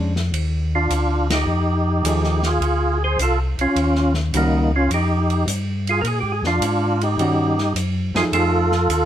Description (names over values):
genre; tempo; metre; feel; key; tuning
soul jazz organ trio; 105 BPM; 4/4; swing 69% on 8ths; Bb mixolydian; A4 = 440 Hz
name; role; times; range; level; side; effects
hollow-body jazz guitar; accompaniment; 0.0-8.7 s; Eb3 to G#4; -23 LUFS; right 1 dB; none
mellow tonewheel organ; bass; 0.0-9.1 s; C2 to Bb2; -21 LUFS; left 1 dB; chorus vibrato, slow rotary speaker
warm soul drum kit; drums; 0.2-9.1 s; hi-hat, ride cymbal, snare drum; -29 LUFS; right 1 dB; none
percussive tonewheel organ; melody; 0.8-9.1 s; Bb3 to C5; -20 LUFS; right 1 dB; overdrive, chorus vibrato, stopped rotary speaker
room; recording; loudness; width
moderate stone room reverb, RT60 1.0 s; band playing live in one room; -17 LUFS; side -10 dB against mid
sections
0.0-9.1 A section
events
band accent 1.2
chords
0.0 Bb (rootless); 1.5 F7#9; 3.8 Eb7#9; 6.0 Bb7; 7.2 Eb7#9; 8.3 F7#9